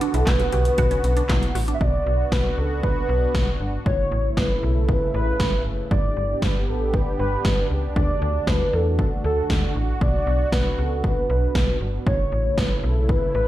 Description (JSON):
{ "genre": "synth-pop", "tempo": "117 BPM", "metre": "4/4", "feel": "straight", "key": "B minor", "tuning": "A4 = 440 Hz", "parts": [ { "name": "warm velvety synth lead", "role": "melody", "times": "0.0-13.5 s", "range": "F#4 to E5", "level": "-25 LUFS", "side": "equal", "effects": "chorus, ping-pong delay" }, { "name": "sweeping resonant pad", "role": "sustained chords", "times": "0.0-13.5 s", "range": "C#3 to G4", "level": "-30 LUFS", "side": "right 1 dB", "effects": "chorus" }, { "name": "resonant blip pluck", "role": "arpeggios", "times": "0.0-1.8 s", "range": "C#4 to G4", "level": "-30 LUFS", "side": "right 4 dB", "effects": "phaser, ping-pong delay" }, { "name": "80s electronic pad drums", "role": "drums", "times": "0.0-13.2 s", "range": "handclaps, hi-hat, kick drum, snare drum", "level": "-23 LUFS", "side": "equal", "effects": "none" }, { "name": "slap-like FM bass", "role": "bass", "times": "0.1-13.5 s", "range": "F#1 to E2", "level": "-23 LUFS", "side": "equal", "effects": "none" } ], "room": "light reverb", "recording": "played on a big sound system in a bare room, large studio reverb", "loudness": "-19 LUFS", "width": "side -14 dB against mid", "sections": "0.0-1.8 A section; 1.8-13.5 B section", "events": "none", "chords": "0.0 Bm; 3.9 A; 5.9 G; 8.0 D; 10.0 Bm; 12.1 A", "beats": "0.27 0.78 1.30 | 1.81 2.32 2.83 3.35 | 3.86 4.37 4.88 5.40 | 5.91 6.42 6.94 7.45 | 7.96 8.47 8.99 9.50 | 10.01 10.53 11.04 11.55 | 12.06 12.58 13.09" }